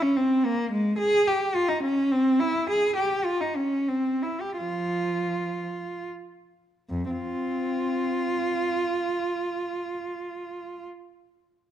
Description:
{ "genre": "classical, baroque-style suite movement for unaccompanied cello", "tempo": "71-110 BPM", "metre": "3/4", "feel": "rubato", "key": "F minor", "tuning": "A4 = 440 Hz", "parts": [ { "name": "rich cello", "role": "solo", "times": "0.0-10.9 s", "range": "F2 to Ab4", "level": "-24 LUFS", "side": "equal", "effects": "none" } ], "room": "moderate recital hall reverb, RT60 1.3 s", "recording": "dark, warm production", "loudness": "-24 LUFS", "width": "side -10 dB against mid", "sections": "0.0-6.9 A section; 6.9-11.7 B section", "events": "slowing down 1.8-6.9", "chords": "none" }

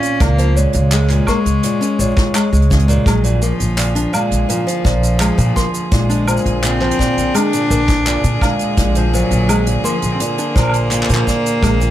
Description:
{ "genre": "folktronica", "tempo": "84 BPM", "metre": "4/4", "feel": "straight", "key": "unclear", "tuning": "A4 = 440 Hz", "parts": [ { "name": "rich cello", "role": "melody", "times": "0.0-11.9 s", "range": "F3 to D4", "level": "-19 LUFS", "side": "left 1 dB", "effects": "ping-pong delay" }, { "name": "large celesta", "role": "second line", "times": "0.0-11.9 s", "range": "C5 to Db6", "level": "-26 LUFS", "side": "equal", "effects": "digital delay" }, { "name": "nylon-string guitar", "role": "arpeggios", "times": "0.0-11.9 s", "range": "Bb2 to D4", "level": "-20 LUFS", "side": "equal", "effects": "ping-pong delay" }, { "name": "jazz brush drum kit", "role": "drums", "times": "0.0-11.9 s", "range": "handclaps, hi-hat, shaker, woodblock", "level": "-23 LUFS", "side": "right 1 dB", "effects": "none" }, { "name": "upright bass", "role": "bass", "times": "0.2-11.9 s", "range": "Bb1 to Bb2", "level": "-16 LUFS", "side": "equal", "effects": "tube saturation" }, { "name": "kick drum", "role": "drums", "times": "0.2-11.8 s", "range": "none", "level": "-18 LUFS", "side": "equal", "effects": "none" }, { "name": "clear string quartet", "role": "sustained chords", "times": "3.1-11.9 s", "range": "D3 to Ab4", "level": "-26 LUFS", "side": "left 2 dB", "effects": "none" } ], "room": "light reverb, small room ambience", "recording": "none", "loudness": "-13 LUFS", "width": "side -12 dB against mid", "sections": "0.0-11.9 A section", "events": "none", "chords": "0.0 Db6; 3.1 Bb7" }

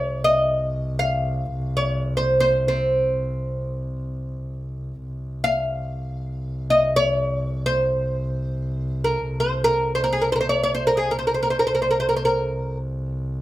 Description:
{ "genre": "Persian modal ensemble", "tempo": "free time", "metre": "none", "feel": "none", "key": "C dastgah shur", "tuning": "A4 = 440 Hz", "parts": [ { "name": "oud", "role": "melody", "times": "0.0-12.8 s", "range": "C4 to F5", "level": "-20 LUFS", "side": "equal", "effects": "none" }, { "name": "rich double bass", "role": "drone", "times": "0.0-13.4 s", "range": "C2", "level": "-27 LUFS", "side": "equal", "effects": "none" } ], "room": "moderate studio reverb, RT60 0.6 s", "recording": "none", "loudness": "-20 LUFS", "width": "side -15 dB against mid", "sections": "0.0-5.0 A section; 5.0-13.4 A section", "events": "none", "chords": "none" }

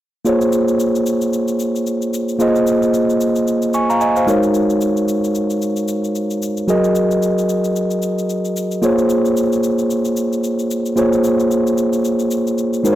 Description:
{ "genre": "amapiano", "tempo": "112 BPM", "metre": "4/4", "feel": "swing 58% on 16ths", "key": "Bb minor", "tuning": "A4 = 440 Hz", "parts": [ { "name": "mellow tine electric piano", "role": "accompaniment", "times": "0.2-13.0 s", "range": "Gb3 to Db6", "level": "-15 LUFS", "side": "equal", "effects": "none" }, { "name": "shaker", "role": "drums", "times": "0.3-13.0 s", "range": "none", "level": "-33 LUFS", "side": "left 5 dB", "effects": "none" } ], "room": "light reverb, digital ambience", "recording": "blown-out, overdriven recording, overdrive", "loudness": "-15 LUFS", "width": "side -13 dB against mid", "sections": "0.3-13.0 A section", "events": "none", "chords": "0.3 Bbm9; 4.3 Ab9sus4; 6.7 Gb69; 8.8 Bbm9" }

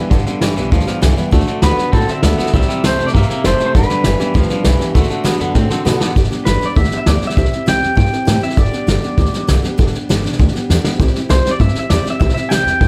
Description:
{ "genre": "rockabilly", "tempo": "199 BPM", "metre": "4/4", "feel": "straight", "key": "G major", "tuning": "A4 = 440 Hz", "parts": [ { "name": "picked steel-string acoustic guitar", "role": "accompaniment", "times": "0.0-12.9 s", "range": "G2 to A4", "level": "-24 LUFS", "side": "equal", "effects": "none" }, { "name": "twangy electric guitar", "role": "riff", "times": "0.0-6.1 s", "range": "G2 to C4", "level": "-24 LUFS", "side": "equal", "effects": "none" }, { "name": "upright bass", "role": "bass", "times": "0.1-12.9 s", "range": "F#1 to B2", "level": "-19 LUFS", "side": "equal", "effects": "none" }, { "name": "vintage brush drum kit", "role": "drums", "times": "0.1-12.9 s", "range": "hi-hat, kick drum, snare drum", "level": "-18 LUFS", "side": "equal", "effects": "none" }, { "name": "electric guitar through a small old amp", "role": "melody", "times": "1.6-12.9 s", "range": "A4 to G5", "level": "-22 LUFS", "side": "equal", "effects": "analog delay" } ], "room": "little or no reverb", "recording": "none", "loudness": "-15 LUFS", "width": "mono", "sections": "0.0-6.2 A section; 6.2-12.9 A section", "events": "drum fill 5.6-6.2, 10.7-11.0", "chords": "0.0 G; 1.3 D; 2.5 C; 3.7 G; 5.0 D; 6.2 G; 7.4 C; 8.6 G; 11.0 C" }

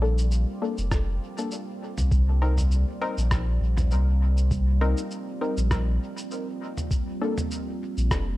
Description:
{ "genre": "ambient dub", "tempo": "100 BPM", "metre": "4/4", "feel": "swing 55% on 16ths", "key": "unclear", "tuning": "A4 = 440 Hz", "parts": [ { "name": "deep dark ambient pad", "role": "sustained chords", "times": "0.0-8.4 s", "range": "G3 to D5", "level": "-34 LUFS", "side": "right 2 dB", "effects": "chorus, built-in reverb" }, { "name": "filtered dub chord stab", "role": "stabs", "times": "0.0-7.3 s", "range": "Bb3 to Bb4", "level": "-32 LUFS", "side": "left 3 dB", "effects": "chorus, dub echo" }, { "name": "warm sub bass", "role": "bass", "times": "0.0-8.4 s", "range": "F1 to C2", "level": "-22 LUFS", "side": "equal", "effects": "none" }, { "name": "lo-fi sampler-style drum kit", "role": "drums", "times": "0.2-8.2 s", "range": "cabasa, rim click, toms", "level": "-33 LUFS", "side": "equal", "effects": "small room reverb, dub echo" }, { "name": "electronic kick drum", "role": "drums", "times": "0.9-8.2 s", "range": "none", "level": "-26 LUFS", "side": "equal", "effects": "small room reverb" } ], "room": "digital ambience", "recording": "dark, warm production", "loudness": "-23 LUFS", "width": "side -17 dB against mid", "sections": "0.0-8.4 A section", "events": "fade-in on ambient pad 0.0-8.4", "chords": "0.0 Bbmaj7; 2.1 Cm7; 6.9 Bb" }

